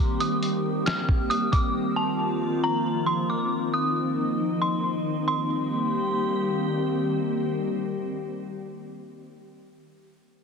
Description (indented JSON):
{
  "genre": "hip hop, atmospheric cloud-rap",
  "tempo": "136 BPM",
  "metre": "4/4",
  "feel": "half-time",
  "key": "C minor",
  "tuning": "A4 = 437 Hz",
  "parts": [
    { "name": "glassy FM pad", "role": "sustained chords", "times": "0.0-8.9 s", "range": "Eb3 to G4", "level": "-26 LUFS", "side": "left 1 dB", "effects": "ensemble chorus, built-in reverb, sidechain pumping" },
    { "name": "dark detuned synth bell", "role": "melody", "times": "0.2-6.6 s", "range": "A5 to F6", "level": "-28 LUFS", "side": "equal", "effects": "chorus, ping-pong delay" },
    { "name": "lo-fi sampler-style drum kit", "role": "drums", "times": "0.2-1.6 s", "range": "hi-hat, kick drum, snare drum", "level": "-24 LUFS", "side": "equal", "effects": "vintage 12-bit sampler grit" }
  ],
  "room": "moderate huge ambient reverb, RT60 4.4 s",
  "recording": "heavily compressed radio sound",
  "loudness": "-23 LUFS",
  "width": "side -5 dB against mid",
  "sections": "0.0-5.3 A section; 5.3-8.8 B section",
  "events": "none",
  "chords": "0.0 Cm7; 1.7 F7sus4; 5.3 Cm7",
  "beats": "0.42 0.87 1.31 | 1.75 2.19 2.63 3.07 | 3.51 3.95 4.40 4.84 | 5.28 5.72 6.16 6.60 | 7.04 7.48 7.92 8.37"
}